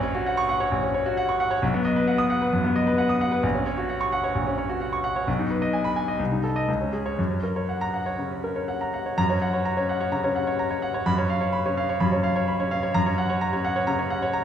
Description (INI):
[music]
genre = classical, virtuoso piano study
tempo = 129 BPM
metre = 4/4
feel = rubato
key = F# major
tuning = A4 = 438 Hz
[part]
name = clear grand piano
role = solo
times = 0.0-14.4 s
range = A#1 to D#6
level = -22 LUFS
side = equal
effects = none
[sound]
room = wet recital hall reverb, RT60 1.5 s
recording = heard from further back in the room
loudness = -22 LUFS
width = side -9 dB against mid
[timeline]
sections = 0.0-9.2 A section; 9.2-14.4 A section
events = none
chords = 0.0 F#/A#; 1.6 B; 3.4 F#/A#; 5.3 G#m/B; 6.2 Cm6; 6.7 C#5; 7.2 F#; 11.1 C#7/F#; 13.0 F#